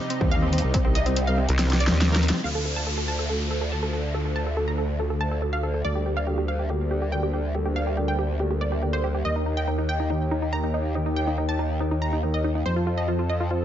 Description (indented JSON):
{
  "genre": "heavy wobble dubstep",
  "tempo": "141 BPM",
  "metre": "4/4",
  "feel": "half-time",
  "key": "D phrygian",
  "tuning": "A4 = 439 Hz",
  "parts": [
    { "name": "lush unison pad", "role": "sustained chords", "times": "0.0-13.6 s", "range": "C3 to A4", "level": "-32 LUFS", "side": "equal", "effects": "chorus, sidechain pumping" },
    { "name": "wide unison pluck", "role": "melody", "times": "0.1-13.6 s", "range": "C4 to Bb5", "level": "-29 LUFS", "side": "right 1 dB", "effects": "dub echo" },
    { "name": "dubstep drum kit", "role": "drums", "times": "0.1-2.4 s", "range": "hi-hat, snare drum", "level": "-26 LUFS", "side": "left 1 dB", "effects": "low-pass filter on hats, low-pass filter on snare" },
    { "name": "growl bass", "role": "bass", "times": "0.2-13.6 s", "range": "C2 to F2", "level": "-25 LUFS", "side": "equal", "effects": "chorus, overdrive" },
    { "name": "electronic kick drum", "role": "drums", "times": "0.2-0.8 s", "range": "none", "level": "-24 LUFS", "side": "equal", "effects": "distortion" },
    { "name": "vowel-sweep wobble bass", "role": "bass", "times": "1.5-2.3 s", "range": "C2 to Eb2", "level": "-21 LUFS", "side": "equal", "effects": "chorus, overdrive" },
    { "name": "downlifter", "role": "sound effects", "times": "2.4-5.8 s", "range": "none", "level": "-34 LUFS", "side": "equal", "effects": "none" }
  ],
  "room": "light reverb",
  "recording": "nothing above 7.6 kHz",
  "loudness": "-22 LUFS",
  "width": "side -10 dB against mid",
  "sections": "0.0-2.4 A section; 2.4-13.6 B section",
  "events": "drop 0.0-2.4; kick drops out 1.6-2.4; drum fill 1.6-2.4; band accent 2.3; filter sweep on analog synth pad 2.4-13.6",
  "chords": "0.0 Cm; 2.4 Dm; 5.8 Gm/D; 9.2 Eb; 12.7 F"
}